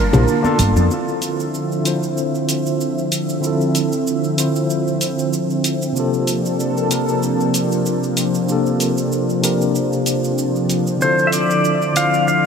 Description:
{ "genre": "sunset chillout", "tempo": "95 BPM", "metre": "4/4", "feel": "swing 55% on 16ths", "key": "D minor", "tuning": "A4 = 444 Hz", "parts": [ { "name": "pedal steel guitar", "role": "melody", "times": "0.0-0.2, 11.0-12.5 s", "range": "Bb4 to F5", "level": "-17 LUFS", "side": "equal", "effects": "analog delay" }, { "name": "tine electric piano", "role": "accompaniment", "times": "0.0-12.5 s", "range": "C3 to A5", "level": "-20 LUFS", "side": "equal", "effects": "medium stereo tremolo, auto-pan, analog delay" }, { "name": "lush unison pad", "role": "sustained chords", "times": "0.0-12.5 s", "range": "D3 to A5", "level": "-21 LUFS", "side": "equal", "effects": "chorus, phaser" }, { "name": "woody fretless electric bass", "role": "bass", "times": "0.1-0.9 s", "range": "G1 to F2", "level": "-16 LUFS", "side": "equal", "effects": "tube saturation, wide subtle chorus" }, { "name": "electronic congas, cabasa and hi-hat", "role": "drums", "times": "0.1-12.4 s", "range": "none", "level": "-23 LUFS", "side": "equal", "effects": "none" }, { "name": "congas", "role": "percussion", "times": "0.4-0.9 s", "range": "none", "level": "-26 LUFS", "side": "right 3 dB", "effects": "none" }, { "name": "electronic kick drum", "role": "drums", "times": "0.6-0.7 s", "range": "none", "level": "-22 LUFS", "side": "equal", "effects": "none" } ], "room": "wet lush hall reverb, RT60 3.0 s", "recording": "dreamy mix soaked in reverb", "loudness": "-16 LUFS", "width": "side -6 dB against mid", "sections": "0.9-12.5 A section", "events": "none", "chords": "0.0 C9sus4 (rootless); 0.9 Dm9; 6.0 C13sus4; 11.0 Dm9" }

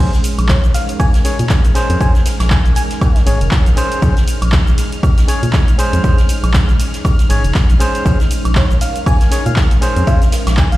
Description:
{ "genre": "deep house", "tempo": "119 BPM", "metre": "4/4", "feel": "swing 57% on 16ths", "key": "Bb minor", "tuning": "A4 = 440 Hz", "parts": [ { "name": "soft string machine", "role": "sustained chords", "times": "0.1-10.8 s", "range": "Ab3 to Bb4", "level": "-25 LUFS", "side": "equal", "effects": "ensemble chorus, sidechain pumping" }, { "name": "overdriven tine electric piano", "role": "stabs", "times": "0.0-10.2 s", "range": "Db4 to Db5", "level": "-22 LUFS", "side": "equal", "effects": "sidechain pumping, dub echo" }, { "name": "organ-like FM bass", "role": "bass", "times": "0.0-10.8 s", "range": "F1 to Bb2", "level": "-14 LUFS", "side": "equal", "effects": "none" }, { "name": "punchy analog drum machine", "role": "drums", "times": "0.0-10.8 s", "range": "handclaps, hi-hat, ride cymbal, shaker, woodblock", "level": "-24 LUFS", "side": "equal", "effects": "none" }, { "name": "warm studio violin section", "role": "texture", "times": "0.0-10.8 s", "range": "F6", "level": "-33 LUFS", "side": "equal", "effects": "none" }, { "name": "jazz brush drum kit", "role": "drums", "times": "0.1-10.7 s", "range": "hi-hat, snare drum", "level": "-32 LUFS", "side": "right 2 dB", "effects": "none" }, { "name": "bell-like FM electric piano", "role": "melody", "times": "0.5-3.2, 8.6-10.8 s", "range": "Db5 to Ab5", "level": "-25 LUFS", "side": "left 1 dB", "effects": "chorus, phaser, digital delay" }, { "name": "electronic kick drum", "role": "drums", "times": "0.5-10.7 s", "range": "none", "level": "-12 LUFS", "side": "equal", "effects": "none" } ], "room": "little or no reverb", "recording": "played on a big sound system in a bare room, large studio reverb", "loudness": "-11 LUFS", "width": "side -16 dB against mid", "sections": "0.0-10.8 A section", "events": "none", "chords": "0.0 Bbm7" }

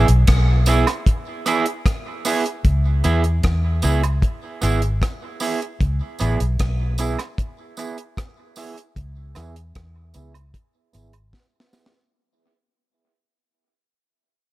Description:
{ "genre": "dub reggae", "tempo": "76 BPM", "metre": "4/4", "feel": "straight", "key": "C# minor", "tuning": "A4 = 440 Hz", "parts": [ { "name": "electric guitar at the edge of break-up", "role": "accompaniment", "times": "0.0-11.9 s", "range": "B3 to G#4", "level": "-24 LUFS", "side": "right 4 dB", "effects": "low-pass filter, tape echo" }, { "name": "vintage muted fingered electric bass", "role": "bass", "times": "0.0-11.3 s", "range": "G#1 to E2", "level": "-18 LUFS", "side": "equal", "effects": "none" }, { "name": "deep reggae drum kit", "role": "drums", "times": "0.1-12.0 s", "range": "hi-hat, kick drum, rim click, snare drum", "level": "-21 LUFS", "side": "equal", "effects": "none" }, { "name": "tambourine and woodblock", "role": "percussion", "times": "0.7-11.9 s", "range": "none", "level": "-30 LUFS", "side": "right 6 dB", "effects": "tape echo" } ], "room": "studio reverb", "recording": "none", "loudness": "-18 LUFS", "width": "side -17 dB against mid", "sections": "0.0-12.1 A section", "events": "fade-out 0.0-12.1; filter sweep on clean electric guitar 0.0-12.1; drum fill 11.3-12.1", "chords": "0.0 C#m7" }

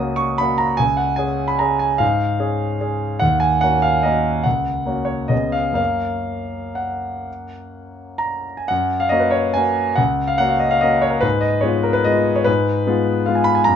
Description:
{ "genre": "classical, piano waltz", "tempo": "117-155 BPM", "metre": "3/4", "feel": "rubato", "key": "F# major", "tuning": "A4 = 439 Hz", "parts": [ { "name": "clear concert grand piano", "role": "solo", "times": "0.0-13.8 s", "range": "C#2 to D#6", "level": "-17 LUFS", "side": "equal", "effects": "none" } ], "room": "light reverb", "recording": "nothing above 7.8 kHz", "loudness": "-16 LUFS", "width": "side -8 dB against mid", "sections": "0.0-8.7 A section; 8.7-13.8 A section", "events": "none", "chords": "0.0 F#; 0.8 C#; 3.2 D#m7; 4.5 F#/C#; 5.3 C#7; 5.8 F#; 11.2 Fdim/Ab" }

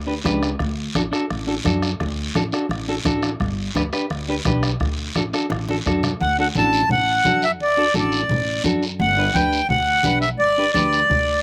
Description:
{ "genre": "latin, cumbia", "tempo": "171 BPM", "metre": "4/4", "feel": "straight", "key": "D major", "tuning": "A4 = 440 Hz", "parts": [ { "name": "upright bass", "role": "bass", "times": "0.0-11.4 s", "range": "G1 to F#2", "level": "-28 LUFS", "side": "equal", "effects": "none" }, { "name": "clean electric guitar", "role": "accompaniment", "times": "0.1-11.0 s", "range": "D4 to B4", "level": "-26 LUFS", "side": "equal", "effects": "none" }, { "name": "bombo", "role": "percussion", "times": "0.3-6.2 s", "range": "none", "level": "-31 LUFS", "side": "equal", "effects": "none" }, { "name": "congas", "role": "percussion", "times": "0.3-11.3 s", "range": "none", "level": "-30 LUFS", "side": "equal", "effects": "none" }, { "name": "guiro", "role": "percussion", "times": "0.3-11.4 s", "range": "none", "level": "-33 LUFS", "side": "equal", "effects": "none" }, { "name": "accordion", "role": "melody", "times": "6.2-11.4 s", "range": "D5 to A5", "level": "-20 LUFS", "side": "equal", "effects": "slapback echo" } ], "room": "little or no reverb", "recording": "recorded outdoors, with no room sound", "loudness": "-20 LUFS", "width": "mono", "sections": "0.0-6.2 A section; 6.2-11.4 B section", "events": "drum fill 5.5-6.2", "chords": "0.0 G; 0.6 D; 3.4 G; 4.8 D; 9.0 G" }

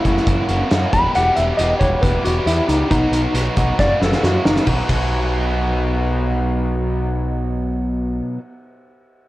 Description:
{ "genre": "indie rock", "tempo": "136 BPM", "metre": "4/4", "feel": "straight", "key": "B major", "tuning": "A4 = 440 Hz", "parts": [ { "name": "mellow electric guitar", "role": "melody", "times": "0.0-4.7 s", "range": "D#4 to B5", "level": "-19 LUFS", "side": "left 1 dB", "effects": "tremolo, slapback echo" }, { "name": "biting overdriven guitar", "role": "riff", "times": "0.0-8.4 s", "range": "E2 to G4", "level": "-22 LUFS", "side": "equal", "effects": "none" }, { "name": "growling picked electric bass", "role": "bass", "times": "0.0-8.2 s", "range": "E1 to F#2", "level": "-21 LUFS", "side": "equal", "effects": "overdrive" }, { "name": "loose indie drum kit", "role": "drums", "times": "0.0-5.0 s", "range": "hi-hat, kick drum, ride cymbal, snare drum", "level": "-22 LUFS", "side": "equal", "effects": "none" } ], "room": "light reverb, small room ambience", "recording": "worn, warbling old tape, cassette tape, warbly pitch drift", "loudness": "-16 LUFS", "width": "side -17 dB against mid", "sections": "0.0-4.7 A section; 4.7-8.2 B section", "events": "clean electric guitar solo 0.0-4.7; drum fill 3.8-4.7", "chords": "0.0 F#7; 0.9 Em; 2.9 B; 3.8 F#5; 4.7 B" }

